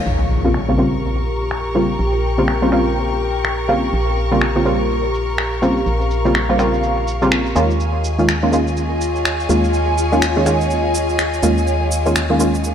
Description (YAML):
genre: deep house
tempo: 124 BPM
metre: 4/4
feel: swing 61% on 16ths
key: Bb dorian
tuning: A4 = 440 Hz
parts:
  - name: ethereal airy pad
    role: texture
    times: 0.0-12.7 s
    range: F4 to Ab5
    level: -27 LUFS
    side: left 1 dB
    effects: ensemble chorus, built-in reverb, phaser
  - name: rich studio violin section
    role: texture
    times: 0.0-12.7 s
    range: Ab4 to Db6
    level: -29 LUFS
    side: left 1 dB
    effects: none
  - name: warbly tape-like pad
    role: sustained chords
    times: 0.1-12.7 s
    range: F4 to Db6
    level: -23 LUFS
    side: equal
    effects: chorus, built-in reverb, phaser, vintage 12-bit sampler grit
  - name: organ-like FM bass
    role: bass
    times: 0.1-12.7 s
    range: Bb1 to Eb2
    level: -21 LUFS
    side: equal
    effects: none
  - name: electronic cabasa and finger snaps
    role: drums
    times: 0.1-12.7 s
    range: none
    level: -24 LUFS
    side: equal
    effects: low-pass filter on hats, low-pass filter on perc, low-pass filter on snare, low-pass filter on room
  - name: impact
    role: sound effects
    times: 0.1-2.0 s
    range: none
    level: -24 LUFS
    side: equal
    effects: none
  - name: filtered dub chord stab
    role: stabs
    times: 0.4-12.7 s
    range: Db3 to F4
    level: -18 LUFS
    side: equal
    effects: chorus, analog delay
room: light reverb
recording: dry, gritty hardware recording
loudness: -15 LUFS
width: side -8 dB against mid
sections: 0.1-12.7 A section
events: impact 0.1-2.0; filter sweep on drum 0.1-12.7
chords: 0.1 Bbm69; 7.6 Eb9sus4